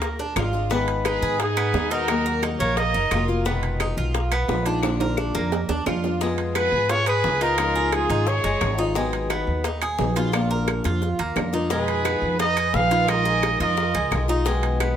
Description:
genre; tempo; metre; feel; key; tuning
latin, Cuban son and guajira; 174 BPM; 4/4; straight; unclear; A4 = 440 Hz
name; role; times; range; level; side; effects
picked acoustic archtop guitar; accompaniment; 0.0-15.0 s; Cb3 to Ab4; -28 LUFS; left 4 dB; none
Cuban tres; arpeggios; 0.0-15.0 s; Ab3 to Bb4; -28 LUFS; right 2 dB; none
upright bass; bass; 0.0-14.9 s; F1 to Ab2; -26 LUFS; equal; none
bongos; percussion; 0.0-15.0 s; none; -32 LUFS; left 6 dB; none
timbales; percussion; 0.0-15.0 s; none; -30 LUFS; right 8 dB; none
claves; percussion; 0.4-15.0 s; none; -34 LUFS; left 6 dB; none
warm trumpet; melody; 1.1-3.3, 6.6-8.8, 11.7-14.3 s; Ab4 to F5; -23 LUFS; right 2 dB; slapback echo
warm chamber violin section; second line; 1.1-3.3, 6.6-8.8, 11.7-14.2 s; Eb4 to Cb5; -31 LUFS; right 1 dB; none
room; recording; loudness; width
light reverb; none; -20 LUFS; side -9 dB against mid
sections
0.0-6.2 A section; 6.2-15.0 B section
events
drum fill 4.8-6.2, 10.8-11.7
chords
0.0 Bb7; 0.7 Abm; 2.1 Ebmadd9; 3.5 Fm7b5; 4.8 Bb; 6.2 Fdim; 7.6 Dbadd9; 9.0 Abm7; 10.3 Bb; 11.7 Fm7b5; 13.1 Bb7sus4; 14.5 B6

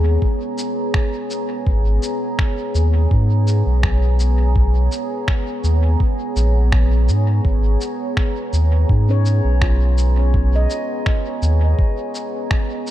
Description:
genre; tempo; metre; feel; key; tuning
ambient dub; 83 BPM; 4/4; straight; G# dorian; A4 = 440 Hz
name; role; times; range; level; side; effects
deep dark ambient pad; sustained chords; 0.0-12.9 s; B3 to A#5; -24 LUFS; equal; chorus, built-in reverb
warm sub bass; bass; 0.0-11.7 s; G#1 to G#2; -15 LUFS; equal; none
electronic kick drum; drums; 0.2-12.7 s; none; -18 LUFS; equal; none
electronic shaker and finger snaps; drums; 0.6-12.9 s; none; -28 LUFS; equal; dub echo
handpan; arpeggios; 9.1-12.5 s; C#4 to D#5; -27 LUFS; left 1 dB; tape echo
room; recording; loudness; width
little or no reverb; dark, warm production; -15 LUFS; side -13 dB against mid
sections
0.0-12.9 A section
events
none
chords
0.0 G#madd9

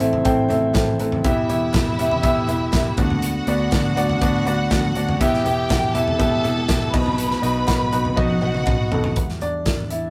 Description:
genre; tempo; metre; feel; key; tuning
piano-driven pop; 121 BPM; 4/4; straight; E minor; A4 = 438 Hz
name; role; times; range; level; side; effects
clear grand piano; accompaniment; 0.0-10.1 s; A2 to G5; -24 LUFS; equal; none
vintage muted picked electric bass; bass; 0.0-10.1 s; E1 to E2; -28 LUFS; equal; none
modern studio drum kit; drums; 0.0-10.0 s; crash cymbal, hi-hat, kick drum, snare drum, toms; -25 LUFS; equal; none
group handclap; percussion; 0.5-8.8 s; none; -44 LUFS; equal; none
bright studio violin section; second line; 1.2-9.1 s; E4 to B5; -28 LUFS; equal; none
room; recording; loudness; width
moderate small room reverb, RT60 0.5 s; rough rehearsal-room recording; -20 LUFS; mono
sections
0.0-9.2 A section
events
drum fill 8.2-9.2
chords
0.0 Am; 1.2 Em; 3.0 Bm/D; 5.2 Em; 6.9 B; 9.2 Em

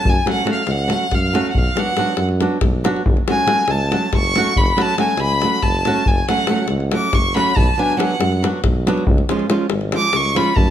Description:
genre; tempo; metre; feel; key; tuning
balkan folk, Balkan wedding band; 279 BPM (eighths); 7/8; straight; F# harmonic minor; A4 = 438 Hz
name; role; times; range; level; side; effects
rich violin; melody; 0.0-10.7 s; E#5 to D6; -19 LUFS; equal; slapback echo
warm tuba; bass; 0.0-10.7 s; F#1 to F#2; -22 LUFS; right 1 dB; none
davul; percussion; 0.1-10.7 s; none; -20 LUFS; left 2 dB; none
flamenco guitar; accompaniment; 0.3-10.5 s; E#3 to F#4; -21 LUFS; right 3 dB; none
room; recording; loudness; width
light reverb; close, detailed microphones; -15 LUFS; side -10 dB against mid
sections
0.0-10.7 A section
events
violin solo 0.0-10.7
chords
0.0 F#m; 1.6 Bm; 3.1 F#m; 7.6 Bm; 9.1 C#

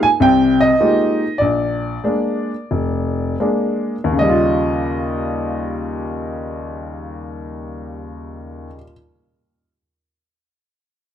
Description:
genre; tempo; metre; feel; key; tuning
solo jazz; 75-104 BPM; 4/4; swing 67% on 8ths; Eb mixolydian; A4 = 440 Hz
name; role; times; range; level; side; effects
warm upright piano; solo; 0.0-8.9 s; F1 to Ab5; -17 LUFS; equal; none
room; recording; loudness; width
moderate large studio reverb, RT60 1.4 s; close, detailed microphones; -16 LUFS; side -9 dB against mid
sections
0.0-4.2 A section; 4.2-7.4 B section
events
slowing down 0.0-4.2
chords
0.0 Fm11; 1.4 Bb7; 4.2 Eb9

